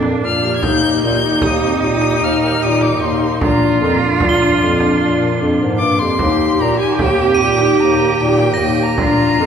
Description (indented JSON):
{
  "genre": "contemporary instrumental, chamber music in an uneven meter",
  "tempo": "151 BPM",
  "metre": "7/4",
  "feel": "straight",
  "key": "unclear",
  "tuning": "A4 = 439 Hz",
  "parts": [
    { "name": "rich cello", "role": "second line", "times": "0.0-9.5 s", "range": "D4 to G4", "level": "-19 LUFS", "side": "right 6 dB", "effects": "none" },
    { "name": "dark symphonic string section", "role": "sustained chords", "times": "0.0-9.5 s", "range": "Eb3 to G4", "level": "-23 LUFS", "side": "right 1 dB", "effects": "none" },
    { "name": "vibraphone with soft mallets", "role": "arpeggios", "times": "0.0-9.5 s", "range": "C4 to Bb4", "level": "-19 LUFS", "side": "left 4 dB", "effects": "none" },
    { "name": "warm bass clarinet", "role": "bass", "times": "0.0-9.5 s", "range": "Eb2 to Bb2", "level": "-18 LUFS", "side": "equal", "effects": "none" },
    { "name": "frame drum", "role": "percussion", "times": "0.0-9.2 s", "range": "none", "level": "-25 LUFS", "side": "right 2 dB", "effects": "none" },
    { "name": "warm violin", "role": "melody", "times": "0.3-9.5 s", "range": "G5 to Ab6", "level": "-21 LUFS", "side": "left 4 dB", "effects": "none" },
    { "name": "crotales", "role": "texture", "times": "4.3-9.2 s", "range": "Bb6 to G7", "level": "-25 LUFS", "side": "right 4 dB", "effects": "none" }
  ],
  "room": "wet concert hall reverb, RT60 2.6 s",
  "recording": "recorded in a church or concert hall",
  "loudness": "-12 LUFS",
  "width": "side -7 dB against mid",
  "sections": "0.0-9.5 A section",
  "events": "none",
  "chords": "0.0 Bb; 0.6 Eb; 3.4 Bb; 6.2 Eb"
}